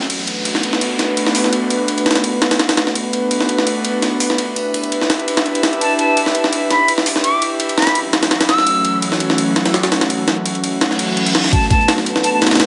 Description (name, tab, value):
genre	drum and bass, jungle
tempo	168 BPM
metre	4/4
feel	swing 53% on 16ths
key	B minor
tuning	A4 = 440 Hz
part	airy breathy pad	sustained chords	0.0-12.7 s	E3 to E5	-21 LUFS	equal	chorus, vintage 12-bit sampler grit
part	crunchy breakbeat drum kit	drums	0.0-0.1, 11.5-12.7 s	hi-hat, snare drum	-30 LUFS	equal	none
part	jungle sampler-style drum kit	drums	0.1-12.7 s	hi-hat, kick drum, ride cymbal, snare drum	-19 LUFS	equal	high-pass filter on cymbals, high-pass filter on snare, high-pass filter on kick, high-pass filter on hats, high-pass filter on room
part	downlifter and reverse cymbal	sound effects	0.1-3.0, 10.9-11.5 s	none	-26 LUFS	equal	none
part	silver concert flute	melody	5.8-9.0, 11.5-12.4 s	A5 to E6	-20 LUFS	equal	dub echo
room	moderate echo chamber reverb, RT60 1.4 s, small room ambience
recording	vinyl crackle, nothing above 11.0 kHz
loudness	-16 LUFS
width	mono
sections	0.1-11.5 A section; 11.5-12.7 B section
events	reverse cymbal 10.9-11.5; build-up 11.5-12.7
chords	0.1 Bm7; 4.4 Em7; 8.0 F#m7; 11.5 Bm7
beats	| 0.10 0.45 0.81 1.17 | 1.52 1.88 2.24 2.60 | 2.95 3.31 3.67 4.03 | 4.38 4.74 5.10 5.45 | 5.81 6.17 6.53 6.88 | 7.24 7.60 7.95 8.31 | 8.67 9.03 9.38 9.74 | 10.10 10.45 10.81 11.17 | 11.53 11.88 12.24 12.60